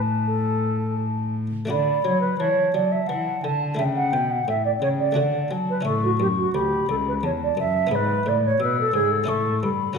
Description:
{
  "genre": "classical, baroque-style sonata movement with continuo",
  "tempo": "87 BPM",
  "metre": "3/4",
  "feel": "straight",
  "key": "D major",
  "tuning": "A4 = 438 Hz",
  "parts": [
    { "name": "mellow baroque flute", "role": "melody", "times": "0.0-10.0 s", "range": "F#5 to E6", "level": "-28 LUFS", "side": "left 10 dB", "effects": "none" },
    { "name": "buff-stop harpsichord", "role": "accompaniment", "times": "0.0-10.0 s", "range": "C#2 to A4", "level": "-30 LUFS", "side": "left 2 dB", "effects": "none" },
    { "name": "dark cello", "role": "bass", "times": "0.0-10.0 s", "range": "C#2 to F#3", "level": "-26 LUFS", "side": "left 1 dB", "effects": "none" },
    { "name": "baroque flute", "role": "second line", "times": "0.3-9.7 s", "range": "F#4 to A5", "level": "-24 LUFS", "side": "right 4 dB", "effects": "none" }
  ],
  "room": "wet recital hall reverb, RT60 1.7 s",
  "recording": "minimal, uncompressed stereo recording",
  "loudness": "-20 LUFS",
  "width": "side -5 dB against mid",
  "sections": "0.0-1.7 A section; 1.7-10.0 A section",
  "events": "none",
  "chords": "0.0 A; 1.7 D; 3.8 A; 5.2 D; 5.9 A; 7.9 E/G#; 9.3 A"
}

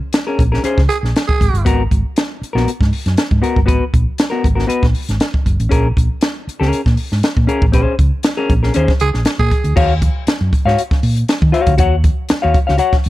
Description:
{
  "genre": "funk",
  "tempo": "118 BPM",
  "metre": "4/4",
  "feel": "straight",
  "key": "Eb minor",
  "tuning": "A4 = 440 Hz",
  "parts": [
    { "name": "compact cocktail drum kit", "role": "drums", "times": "0.1-13.1 s", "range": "crash cymbal, hi-hat, kick drum, snare drum", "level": "-16 LUFS", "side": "equal", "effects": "none" },
    { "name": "semi-hollow electric guitar", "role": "accompaniment", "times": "0.3-13.0 s", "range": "Cb4 to Gb5", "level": "-18 LUFS", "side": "left 4 dB", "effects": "none" },
    { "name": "hollow-body short-scale fingered electric bass", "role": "bass", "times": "0.4-13.1 s", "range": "Gb1 to Eb3", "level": "-16 LUFS", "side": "equal", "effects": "none" },
    { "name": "growling tenor saxophone", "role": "second line", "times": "0.9-1.6, 9.0-9.7 s", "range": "Ab4", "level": "-20 LUFS", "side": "right 5 dB", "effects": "slapback echo" }
  ],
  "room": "small room reverb",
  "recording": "dark, warm production",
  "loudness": "-13 LUFS",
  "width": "side -16 dB against mid",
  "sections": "0.0-9.8 A section; 9.8-13.1 B section",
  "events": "band accent 0.0-1.7, 7.7-9.8",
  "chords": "0.0 Bbm7; 1.7 Abm9; 5.7 Bbm7; 9.8 Ebm9"
}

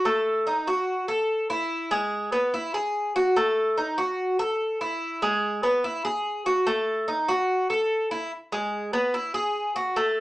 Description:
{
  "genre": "latin",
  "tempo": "145 BPM",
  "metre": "4/4",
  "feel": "straight",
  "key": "E major",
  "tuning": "A4 = 441 Hz",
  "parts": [
    { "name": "Cuban tres", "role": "solo", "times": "0.0-10.2 s", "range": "G#3 to A4", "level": "-23 LUFS", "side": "equal", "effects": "none" }
  ],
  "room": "wet studio reverb, RT60 0.5 s",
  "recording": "band playing live in one room, small speaker sound",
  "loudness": "-23 LUFS",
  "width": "side -17 dB against mid",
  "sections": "0.0-8.3 A section; 8.3-10.2 A section",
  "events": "none",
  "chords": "none"
}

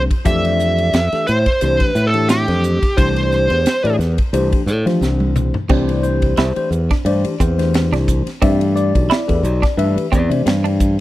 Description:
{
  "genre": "electric jazz fusion",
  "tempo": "88 BPM",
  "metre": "4/4",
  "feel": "swing 55% on 16ths",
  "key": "C major",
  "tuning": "A4 = 439 Hz",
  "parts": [
    { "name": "tine electric piano", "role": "accompaniment", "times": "0.0-11.0 s", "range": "E3 to E5", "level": "-21 LUFS", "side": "left 4 dB", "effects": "phaser" },
    { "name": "modern bright fingered electric bass", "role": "bass", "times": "0.0-11.0 s", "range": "B1 to F3", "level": "-17 LUFS", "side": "equal", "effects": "none" },
    { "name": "crisp fusion drum kit", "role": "drums", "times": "0.1-11.0 s", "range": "crash cymbal, hi-hat, kick drum, ride cymbal, snare drum, toms", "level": "-20 LUFS", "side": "equal", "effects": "none" },
    { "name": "smooth overdriven lead guitar", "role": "melody", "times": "0.3-4.0 s", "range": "G4 to E5", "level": "-18 LUFS", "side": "right 1 dB", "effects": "none" },
    { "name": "clean electric guitar", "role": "stabs", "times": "5.7-10.8 s", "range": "C4 to E4", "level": "-23 LUFS", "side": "right 6 dB", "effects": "ensemble chorus" }
  ],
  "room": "little or no reverb",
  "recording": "dry, close 1970s-style studio recording",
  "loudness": "-14 LUFS",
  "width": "side -16 dB against mid",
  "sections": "0.0-5.7 A section; 5.7-11.0 B section",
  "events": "drum fill 5.0-5.7",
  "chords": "0.0 Fmaj9; 5.7 Cadd9"
}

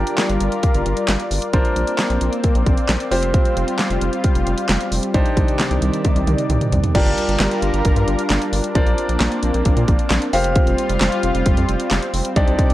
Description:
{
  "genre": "synth-pop",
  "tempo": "133 BPM",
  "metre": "4/4",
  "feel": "straight",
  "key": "unclear",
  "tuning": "A4 = 441 Hz",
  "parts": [
    { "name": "bright grand piano", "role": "accompaniment", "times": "0.0-12.7 s", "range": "C4 to F5", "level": "-24 LUFS", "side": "equal", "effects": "none" },
    { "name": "lush unison pad", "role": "sustained chords", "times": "0.0-12.7 s", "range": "C3 to D5", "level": "-22 LUFS", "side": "left 1 dB", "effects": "chorus" },
    { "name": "rubbery square bass", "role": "bass", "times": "0.0-12.7 s", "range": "F1 to Bb2", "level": "-21 LUFS", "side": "equal", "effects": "none" },
    { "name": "pop drum kit", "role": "drums", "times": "0.1-12.7 s", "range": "crash cymbal, handclaps, hi-hat, kick drum, snare drum, toms", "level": "-19 LUFS", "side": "equal", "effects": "none" }
  ],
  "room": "digital ambience",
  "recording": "dry, gritty hardware recording",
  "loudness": "-16 LUFS",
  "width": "side -15 dB against mid",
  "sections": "0.0-6.9 A section; 6.9-12.7 B section",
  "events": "drum fill 6.0-6.9",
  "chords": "0.0 Gm7; 1.5 Bbadd9; 3.1 Fsus2; 5.1 Cmadd9; 6.9 Gm7; 8.8 Bbadd9; 10.3 Fsus2"
}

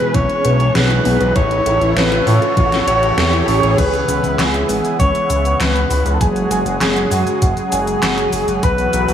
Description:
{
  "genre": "synthwave",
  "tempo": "99 BPM",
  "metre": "4/4",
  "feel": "straight",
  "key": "C# minor",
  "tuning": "A4 = 443 Hz",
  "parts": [
    { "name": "mellow alto saxophone", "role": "melody", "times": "0.0-9.1 s", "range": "F#4 to C#5", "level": "-18 LUFS", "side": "left 1 dB", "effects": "tape echo" },
    { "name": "warm analog pad", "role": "sustained chords", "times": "0.0-9.1 s", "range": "B2 to A4", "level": "-22 LUFS", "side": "right 1 dB", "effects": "chorus, sidechain pumping" },
    { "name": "soft round pluck", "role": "arpeggios", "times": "0.0-3.8 s", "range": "B3 to C#5", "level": "-24 LUFS", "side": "equal", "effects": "chorus, tape echo" },
    { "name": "riser", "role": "sound effects", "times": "0.0-3.8 s", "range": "none", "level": "-23 LUFS", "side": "right 1 dB", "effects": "none" },
    { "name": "fat analog bass", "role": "bass", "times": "0.1-9.1 s", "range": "F#1 to A2", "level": "-18 LUFS", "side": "equal", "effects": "none" },
    { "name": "electronic kick drum", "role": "drums", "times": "0.1-8.8 s", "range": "none", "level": "-18 LUFS", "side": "equal", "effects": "overdrive" },
    { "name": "pop drum kit", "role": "drums", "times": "0.1-9.1 s", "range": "cabasa, crash cymbal, handclaps, hi-hat, snare drum", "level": "-22 LUFS", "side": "equal", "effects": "overdrive" },
    { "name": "FM electric piano with soft pad layer", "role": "second line", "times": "3.8-9.1 s", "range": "F#5 to C#6", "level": "-24 LUFS", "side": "right 2 dB", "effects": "chorus, cassette tape, tape echo" }
  ],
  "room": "moderate lush hall reverb, RT60 2.0 s",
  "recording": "none",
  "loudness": "-13 LUFS",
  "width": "side -9 dB against mid",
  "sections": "0.0-3.8 A section; 3.8-9.1 B section",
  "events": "riser 0.0-3.8; filter sweep on analog synth pad 0.0-3.8; filter sweep on synth arpeggio sound 0.0-3.8",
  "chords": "0.0 E; 1.4 A; 3.8 C#m7; 6.2 F#sus2; 8.6 B7sus4"
}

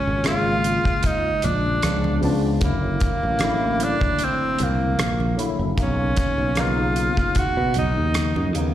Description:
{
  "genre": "lush 1970s-style soul",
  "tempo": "76 BPM",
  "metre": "4/4",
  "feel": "swing 54% on 16ths",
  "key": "unclear",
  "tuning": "A4 = 440 Hz",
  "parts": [
    { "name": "clear tenor saxophone", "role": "melody", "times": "0.0-8.5 s", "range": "A#3 to F#4", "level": "-23 LUFS", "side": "right 1 dB", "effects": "slapback echo" },
    { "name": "barky tine electric piano", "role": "accompaniment", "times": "0.0-8.7 s", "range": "C#3 to E#4", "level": "-26 LUFS", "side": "left 2 dB", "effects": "overdrive, ensemble chorus, slapback echo" },
    { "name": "modern bright fingered electric bass", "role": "bass", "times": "0.1-8.7 s", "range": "F#1 to B2", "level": "-23 LUFS", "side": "equal", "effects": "none" },
    { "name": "damped 70s drum kit", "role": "drums", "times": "0.2-8.7 s", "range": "hi-hat, kick drum, rim click", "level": "-25 LUFS", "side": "equal", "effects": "none" },
    { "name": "congas", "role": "percussion", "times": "0.2-8.5 s", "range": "none", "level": "-31 LUFS", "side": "right 4 dB", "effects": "none" }
  ],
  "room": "moderate club reverb, RT60 0.6 s",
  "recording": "live gig heard through the venue's PA, recital hall reverb",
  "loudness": "-19 LUFS",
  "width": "side -12 dB against mid",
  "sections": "0.0-8.7 A section",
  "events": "none",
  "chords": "0.0 A#m7; 1.8 C#7b9; 2.6 F#7alt; 5.8 Bmaj9"
}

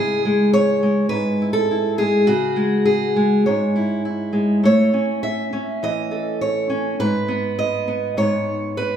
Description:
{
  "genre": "folk, solo fingerstyle acoustic guitar",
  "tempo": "102 BPM",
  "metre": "4/4",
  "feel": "straight",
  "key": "unclear",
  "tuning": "A4 = 440 Hz",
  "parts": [
    { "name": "fingerpicked steel-string acoustic guitar", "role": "solo", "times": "0.0-9.0 s", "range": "G#2 to E5", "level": "-17 LUFS", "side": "equal", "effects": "none" }
  ],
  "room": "wet recital hall reverb, RT60 1.3 s",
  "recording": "recorded in a church or concert hall",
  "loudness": "-17 LUFS",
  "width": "side -8 dB against mid",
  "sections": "0.0-9.0 A section",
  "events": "none",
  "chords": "0.0 C#m; 4.6 A; 7.0 G#madd11"
}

